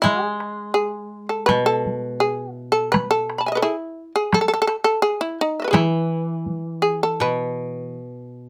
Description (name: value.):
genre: japanese traditional, Japanese chamber music.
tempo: 84 BPM.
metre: 2/4.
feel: uneven beats, rubato.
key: unclear.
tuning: A4 = 439 Hz.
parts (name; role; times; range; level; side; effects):
shamisen; melody; 0.0-8.5 s; D#4 to B5; -22 LUFS; equal; none.
koto; accompaniment; 0.0-8.5 s; B2 to G#3; -27 LUFS; equal; none.
taiko ensemble; percussion; 0.0-6.6 s; none; -24 LUFS; equal; none.
room: light reverb.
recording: close, detailed microphones.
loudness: -22 LUFS.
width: mono.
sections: 0.0-7.2 A section; 7.2-8.5 B section.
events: none.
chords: none.